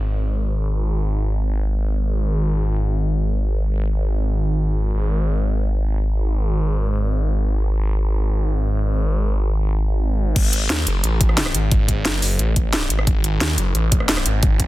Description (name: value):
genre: dark technical drum and bass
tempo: free time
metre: none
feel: none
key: unclear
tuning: A4 = 438 Hz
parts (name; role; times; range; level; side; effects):
- phased detuned saw bass; bass; 0.0-14.7 s; F#1 to D#2; -19 LUFS; equal; phaser, tube saturation
- drum and bass drum kit; drums; 10.4-14.7 s; crash cymbal, hi-hat, rim click, snare drum; -21 LUFS; equal; overdrive, low-pass filter on hats, low-pass filter on cymbals, low-pass filter on snare, low-pass filter on room
- electronic kick drum; drums; 10.4-14.7 s; none; -18 LUFS; equal; overdrive
room: little or no reverb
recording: dense, heavily limited modern master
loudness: -18 LUFS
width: side -17 dB against mid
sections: 0.0-10.4 A section; 10.4-14.7 B section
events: filter sweep on drum 0.0-10.4; drop 10.4-14.7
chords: none